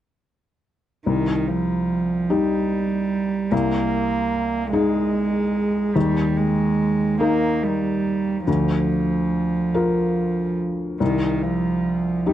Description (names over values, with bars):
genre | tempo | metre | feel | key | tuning
neoclassical piano and strings | 48 BPM (dotted quarters) | 6/8 | rubato | C minor | A4 = 440 Hz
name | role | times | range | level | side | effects
warm cello | second line | 1.1-12.3 s | Eb3 to Bb3 | -22 LUFS | right 4 dB | none
felt-muted upright piano | accompaniment | 1.1-12.3 s | C2 to Bb4 | -22 LUFS | left 3 dB | none
room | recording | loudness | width
studio reverb | dry, close 1970s-style studio recording | -19 LUFS | side -11 dB against mid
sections
1.1-12.3 A section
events
none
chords
1.1 Cm; 3.5 Abadd9/C; 6.0 Eb; 8.5 Bb/D; 11.0 Cm